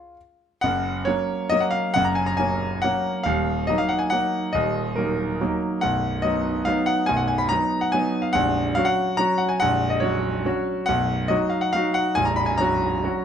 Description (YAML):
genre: classical, piano waltz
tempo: 140 BPM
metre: 3/4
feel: uneven beats, rubato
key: F# major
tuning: A4 = 440 Hz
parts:
  - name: clear grand piano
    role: solo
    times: 0.0-13.2 s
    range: A#0 to B5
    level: -20 LUFS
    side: equal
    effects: none
room: moderate recital hall reverb, RT60 1.7 s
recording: close, detailed microphones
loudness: -20 LUFS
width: side -8 dB against mid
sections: 0.6-13.2 A section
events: none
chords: 0.0 C#; 0.6 F#; 3.3 D#m; 5.8 B; 8.3 F#/A#; 10.9 B; 12.2 F#/A#